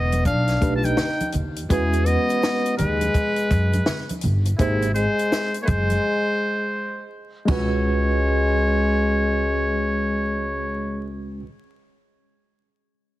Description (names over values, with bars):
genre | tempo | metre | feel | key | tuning
hip hop, jazz-hop | 83 BPM | 4/4 | swing 62% on 16ths | unclear | A4 = 439 Hz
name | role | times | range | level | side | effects
trumpet with metal mute | melody | 0.0-11.1 s | E4 to A5 | -26 LUFS | right 1 dB | none
mellow trombone | second line | 0.0-11.1 s | B#2 to E#4 | -26 LUFS | left 2 dB | none
upright bass | bass | 0.0-11.4 s | E1 to F#2 | -23 LUFS | equal | none
compact cocktail drum kit | drums | 0.1-7.7 s | hi-hat, kick drum, snare drum, splash cymbal, toms | -26 LUFS | equal | none
congas and egg shaker | percussion | 0.1-7.8 s | none | -31 LUFS | right 1 dB | none
tine electric piano | accompaniment | 0.6-11.5 s | G#3 to B#4 | -26 LUFS | right 2 dB | overdrive, fast stereo tremolo
room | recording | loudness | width
light reverb | heavily compressed radio sound, vinyl crackle | -19 LUFS | side -16 dB against mid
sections
0.0-7.5 A section; 7.5-10.4 B section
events
break 6.0-7.5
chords
0.3 B7alt; 1.7 Emaj9; 4.6 G#7; 7.5 C#5